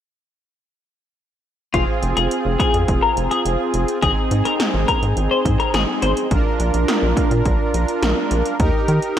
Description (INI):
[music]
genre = synth-pop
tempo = 105 BPM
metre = 4/4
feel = straight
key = F dorian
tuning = A4 = 440 Hz
[part]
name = twelve-string electric guitar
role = second line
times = 1.7-6.1 s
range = F4 to C5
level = -22 LUFS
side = left 4 dB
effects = lush chorus, slapback echo
[part]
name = analog synth brass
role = accompaniment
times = 1.7-9.2 s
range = C4 to Bb4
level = -21 LUFS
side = right 1 dB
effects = chorus
[part]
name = rubbery square bass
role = bass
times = 1.7-9.0 s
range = F1 to Eb3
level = -20 LUFS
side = equal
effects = none
[part]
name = 80s electronic pad drums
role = drums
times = 1.7-9.2 s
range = hi-hat, kick drum, snare drum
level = -21 LUFS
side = equal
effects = gated reverb
[sound]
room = light reverb, digital ambience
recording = none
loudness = -16 LUFS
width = side -10 dB against mid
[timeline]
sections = 1.7-9.2 A section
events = none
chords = 1.7 Fm; 4.0 Ab; 6.3 Bb; 8.6 Eb